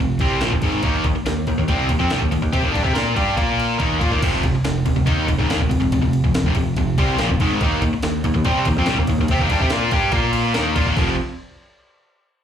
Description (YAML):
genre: hard rock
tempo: 142 BPM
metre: 4/4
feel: straight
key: unclear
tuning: A4 = 440 Hz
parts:
  - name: cranked stack guitar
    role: riff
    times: 0.0-11.1 s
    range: F2 to Bb4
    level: -19 LUFS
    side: equal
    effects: overdrive, slapback echo
  - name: picked electric bass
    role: bass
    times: 0.0-11.2 s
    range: F1 to C3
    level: -24 LUFS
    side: equal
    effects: none
  - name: jungle sampler-style drum kit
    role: drums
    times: 0.2-11.1 s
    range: crash cymbal, kick drum, ride cymbal, snare drum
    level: -22 LUFS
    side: equal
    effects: none
room: little or no reverb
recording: live gig heard through the venue's PA, club reverb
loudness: -17 LUFS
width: side -9 dB against mid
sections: 0.0-4.2 A section; 4.2-11.0 A section; 11.0-12.4 B section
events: kick and snare drop out 3.8-4.2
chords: 0.0 F5; 0.8 Eb5; 3.4 Bb5; 3.8 Eb5; 4.2 F5; 7.6 Eb5; 10.1 Bb5; 10.6 Eb5; 11.0 F5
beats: 0.41 | 0.84 1.26 1.69 2.11 | 2.54 2.96 3.38 3.81 | 4.23 4.65 5.08 5.50 | 5.92 6.34 6.76 7.19 | 7.61 8.03 8.45 8.87 | 9.29 9.71 10.13 10.55 | 10.97